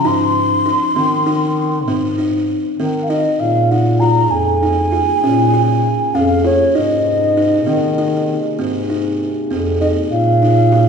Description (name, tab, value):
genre	contemporary instrumental, chamber music in an uneven meter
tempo	197 BPM (eighths)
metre	11/8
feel	straight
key	Bb minor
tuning	A4 = 435 Hz
part	mellow baroque flute	melody	0.0-10.9 s	Db5 to C6	-17 LUFS	equal	none
part	buzzing kalimba	arpeggios	0.1-10.9 s	C4 to F4	-19 LUFS	left 1 dB	none
part	mellow bass clarinet	bass	0.1-10.9 s	F2 to Eb3	-17 LUFS	equal	none
part	dark French horn section	sustained chords	3.4-10.9 s	C3 to Ab4	-26 LUFS	right 2 dB	none
room	wet recital hall reverb, RT60 1.5 s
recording	recorded in a church or concert hall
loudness	-13 LUFS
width	side -6 dB against mid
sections	0.0-3.4 A section; 3.4-10.9 B section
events	none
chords	0.0 Ab; 3.4 Bbm7; 6.8 Abadd9; 10.1 Bbm7